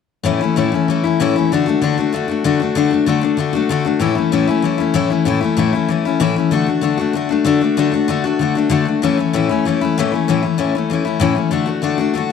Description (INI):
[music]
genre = rock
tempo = 192 BPM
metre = 4/4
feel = straight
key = A major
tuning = A4 = 441 Hz
[part]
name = picked steel-string acoustic guitar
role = solo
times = 0.2-12.3 s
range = A2 to F#4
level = -14 LUFS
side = left 6 dB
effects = none
[sound]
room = moderate echo chamber reverb, RT60 1.3 s, small room ambience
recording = none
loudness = -14 LUFS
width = side -6 dB against mid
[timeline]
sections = 0.2-5.3 A section; 5.3-12.3 B section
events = none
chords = 0.2 A; 1.5 D; 4.0 A; 6.5 D; 9.0 A; 11.5 D